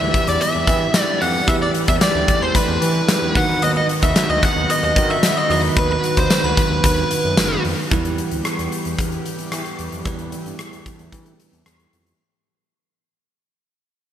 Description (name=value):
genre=1980s-style pop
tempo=112 BPM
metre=4/4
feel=straight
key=E minor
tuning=A4 = 436 Hz
part: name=fuzz lead guitar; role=melody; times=0.0-7.6 s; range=B4 to F#5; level=-20 LUFS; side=equal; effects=distortion, digital delay
part: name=glassy synth bell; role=second line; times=0.0-7.6 s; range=B5 to F#6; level=-26 LUFS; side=left 2 dB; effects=chorus, digital delay
part: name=bell-like tine electric piano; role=accompaniment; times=0.0-12.2 s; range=D#3 to B4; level=-25 LUFS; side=right 4 dB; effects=fast stereo tremolo
part: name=warm analog pad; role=sustained chords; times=0.0-12.2 s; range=D#3 to G4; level=-28 LUFS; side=left 1 dB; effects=chorus
part: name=smooth synth bass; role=bass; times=0.0-12.1 s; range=F#1 to E3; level=-25 LUFS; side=equal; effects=none
part: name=huge arena drum kit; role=drums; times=0.1-12.2 s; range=hi-hat, kick drum, rim click, snare drum, tambourine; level=-20 LUFS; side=equal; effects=gated reverb
room=moderate lush hall reverb, RT60 2.5 s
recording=bright 1980s-style digital production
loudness=-16 LUFS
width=side -10 dB against mid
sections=0.0-7.9 A section; 7.9-12.2 B section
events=fade-out 7.9-12.2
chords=0.0 Em; 3.4 B; 7.9 Em